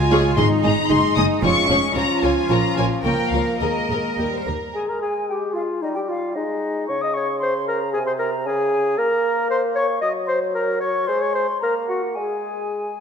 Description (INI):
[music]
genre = quick classical-period movement for symphony orchestra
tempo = 104-116 BPM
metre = 2/4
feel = rubato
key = Ab major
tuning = A4 = 440 Hz
[part]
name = rich studio violin section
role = melody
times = 0.0-4.2 s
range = Eb5 to Eb6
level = -23 LUFS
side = left 4 dB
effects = none
[part]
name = warm French horn section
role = sustained chords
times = 0.0-4.5 s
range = F3 to F4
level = -24 LUFS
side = left 4 dB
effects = none
[part]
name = rich studio cello section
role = bass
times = 0.0-4.4 s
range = Db4 to Bb4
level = -25 LUFS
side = right 4 dB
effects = none
[part]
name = warm studio double bass section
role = bass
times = 0.0-4.5 s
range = F1 to Eb2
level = -24 LUFS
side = right 3 dB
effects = none
[part]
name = warm studio violin section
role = second line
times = 0.1-4.7 s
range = F4 to Eb5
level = -28 LUFS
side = left 3 dB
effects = none
[part]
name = dark symphonic viola section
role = accompaniment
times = 0.1-4.5 s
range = F3 to Ab4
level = -24 LUFS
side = right 2 dB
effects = none
[part]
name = timpani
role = percussion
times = 0.4-0.9 s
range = Ab2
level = -26 LUFS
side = left 1 dB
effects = none
[part]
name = concert flute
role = second line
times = 4.7-13.0 s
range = Eb5 to Eb6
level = -27 LUFS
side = left 2 dB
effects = none
[part]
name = warm clarinet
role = second line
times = 4.7-13.0 s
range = Eb4 to Eb5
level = -23 LUFS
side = left 1 dB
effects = none
[part]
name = mellow bassoon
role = accompaniment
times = 4.8-13.0 s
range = C3 to Bb3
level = -26 LUFS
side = right 1 dB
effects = none
[sound]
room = moderate scoring stage reverb, RT60 1.8 s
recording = none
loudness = -18 LUFS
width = side -6 dB against mid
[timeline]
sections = 0.0-4.7 A section; 4.7-13.0 A section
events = none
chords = 0.4 Ab5; 0.9 Ab7/Gb; 1.4 Db/F; 2.0 Db; 2.5 Bbm; 3.6 Ebsus4; 4.2 Eb; 4.7 N.C.